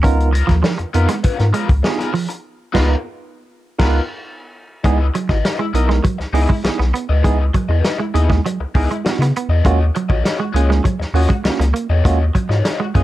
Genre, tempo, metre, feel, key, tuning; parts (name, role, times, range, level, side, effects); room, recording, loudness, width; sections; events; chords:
funk; 100 BPM; 4/4; straight; A4 = 439 Hz
semi-hollow electric guitar; riff; 0.0-13.0 s; E#3 to C#4; -22 LUFS; right 6 dB; vibrato effect
mellow tine electric piano; stabs; 0.0-13.0 s; A#3 to C#5; -23 LUFS; right 3 dB; medium stereo tremolo, plate reverb
round analog bass; bass; 0.0-13.0 s; G#1 to C#3; -15 LUFS; equal
warm soul drum kit; drums; 0.0-13.0 s; crash cymbal, hi-hat, kick drum, snare drum; -19 LUFS; equal
raw garage guitar; accompaniment; 0.3-13.0 s; B3 to D#5; -25 LUFS; left 7 dB; wah, overdrive
mellow horn section; second line; 2.7-3.9 s; G#3 to B4; -27 LUFS; right 1 dB; plate reverb
light reverb; dark, warm production; -14 LUFS; side -15 dB against mid
0.0-4.8 A section; 4.8-13.0 B section
band accent 2.4-4.8
0.0 C#13; 4.8 C#m9; 9.7 D#m7